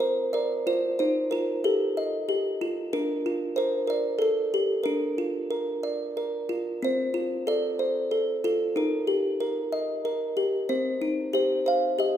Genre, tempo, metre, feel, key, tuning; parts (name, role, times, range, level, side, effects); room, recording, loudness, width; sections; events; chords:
children's music, lullaby; 93 BPM; 3/4; straight; Bb major; A4 = 440 Hz
music box; solo; 0.0-12.2 s; C4 to F5; -24 LUFS; equal
wet recital hall reverb, RT60 1.8 s; recorded in a church or concert hall; -24 LUFS; side -10 dB against mid
0.0-6.8 A section; 6.8-12.2 B section
0.0 Bbsus2; 1.0 Ebadd9; 2.9 Bb; 4.2 Gsus2; 4.9 Bb; 6.8 F; 8.8 Eb; 10.7 Cm